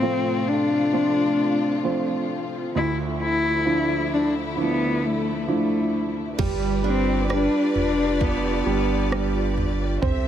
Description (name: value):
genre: pop ballad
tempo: 66 BPM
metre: 4/4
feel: straight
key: unclear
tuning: A4 = 440 Hz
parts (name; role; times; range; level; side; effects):
- warm cello; melody; 0.0-9.6 s; A3 to E4; -23 LUFS; left 3 dB; none
- clear concert grand piano; accompaniment; 0.0-10.3 s; D2 to E4; -26 LUFS; right 4 dB; none
- clear studio string section; sustained chords; 0.0-10.3 s; C3 to E5; -28 LUFS; left 1 dB; none
- picked steel-string acoustic guitar; arpeggios; 6.4-10.1 s; G3 to B4; -29 LUFS; right 8 dB; none
- warm sub bass; bass; 6.4-10.3 s; F1 to C2; -27 LUFS; equal; none
- smooth R&B drum kit; drums; 6.4-10.2 s; crash cymbal, kick drum, rim click, toms; -28 LUFS; right 1 dB; none
room: light reverb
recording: none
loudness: -20 LUFS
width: side -10 dB against mid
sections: 0.0-6.4 A section; 6.4-10.3 B section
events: none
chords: 0.0 F/A; 2.7 Dmadd9; 6.4 G7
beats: 0.02 0.93 1.84 | 2.75 3.66 4.57 5.48 | 6.38 7.29 8.20 9.11 | 10.02